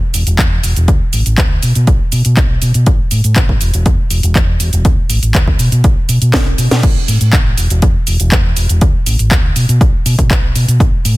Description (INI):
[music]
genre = filtered disco house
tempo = 121 BPM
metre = 4/4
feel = straight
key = unclear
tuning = A4 = 436 Hz
[part]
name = fingered electric bass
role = bass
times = 0.1-11.1 s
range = E1 to B2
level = -13 LUFS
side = equal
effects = tube saturation, sidechain pumping, low-pass filter
[part]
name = house drum kit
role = drums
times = 0.1-11.2 s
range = crash cymbal, handclaps, hi-hat, shaker, snare drum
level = -17 LUFS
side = equal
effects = sidechain pumping on hats, small room ambience, sidechain pumping on perc, sidechain pumping on cymbals
[part]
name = electronic kick drum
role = drums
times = 0.4-10.9 s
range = none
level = -12 LUFS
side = equal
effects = small room ambience
[sound]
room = little or no reverb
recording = dense, heavily limited modern master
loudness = -9 LUFS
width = side -19 dB against mid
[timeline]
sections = 0.0-6.8 A section; 6.8-11.2 B section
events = drum fill 6.3-6.8; drop 6.8-11.2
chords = none